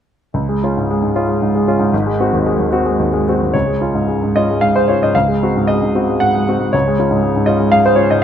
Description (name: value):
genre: classical, romantic character piece for solo piano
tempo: 99-124 BPM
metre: 3/4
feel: rubato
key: Db major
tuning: A4 = 436 Hz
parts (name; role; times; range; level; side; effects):
- clear grand piano; solo; 0.3-8.2 s; Ab1 to Gb5; -12 LUFS; equal; none
room: moderate recital hall reverb, RT60 1.4 s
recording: close, detailed microphones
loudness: -13 LUFS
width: side -9 dB against mid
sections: 0.3-3.5 A section; 3.5-8.2 B section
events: none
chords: 0.3 Db; 1.9 Ab7; 3.5 Db; 5.1 Ab7/Db; 6.7 Db